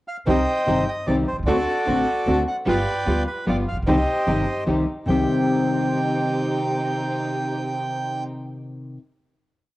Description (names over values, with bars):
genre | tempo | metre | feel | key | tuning
tango | 150 BPM | 3/4 | rubato | C harmonic minor | A4 = 440 Hz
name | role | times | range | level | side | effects
bandoneon | melody | 0.1-8.2 s | F#4 to G5 | -25 LUFS | right 1 dB | cassette tape
nylon-string guitar | accompaniment | 0.3-9.0 s | C3 to G4 | -23 LUFS | left 1 dB | cassette tape
dark studio string section | stabs | 0.3-8.2 s | B3 to G4 | -28 LUFS | right 1 dB | cassette tape
upright bass | bass | 0.3-5.2 s | G1 to D2 | -27 LUFS | equal | none
room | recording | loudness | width
moderate spring reverb, RT60 1.3 s, small room ambience | home recording on cassette | -20 LUFS | side -17 dB against mid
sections
0.0-0.3 pickup bar; 0.3-5.1 A section; 5.1-7.5 final chord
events
none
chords
0.3 Cm; 1.5 D7; 2.7 G7; 3.9 Cm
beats
| 0.27 0.67 1.07 | 1.47 1.87 2.27 | 2.67 3.07 3.46 | 3.86 4.26 4.67 | 5.07 5.48 5.88 | 6.28 6.67 7.08